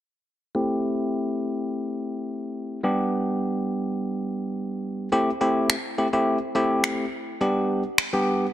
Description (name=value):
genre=dance-pop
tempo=105 BPM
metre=4/4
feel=straight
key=A minor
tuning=A4 = 441 Hz
part: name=barky tine electric piano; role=accompaniment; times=0.5-8.5 s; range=G3 to G4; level=-23 LUFS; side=equal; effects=low-pass filter
part: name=electronic finger snaps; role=drums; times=5.7-8.1 s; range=none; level=-24 LUFS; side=equal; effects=overdrive, soft clipping on snare
room=moderate plate reverb, RT60 2.0 s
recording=dense, heavily limited modern master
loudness=-23 LUFS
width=side -13 dB against mid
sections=0.6-5.1 A section; 5.1-8.5 B section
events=filter sweep on tine electric piano 0.6-5.1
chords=0.6 Am7; 2.8 G; 5.1 Am7; 7.4 G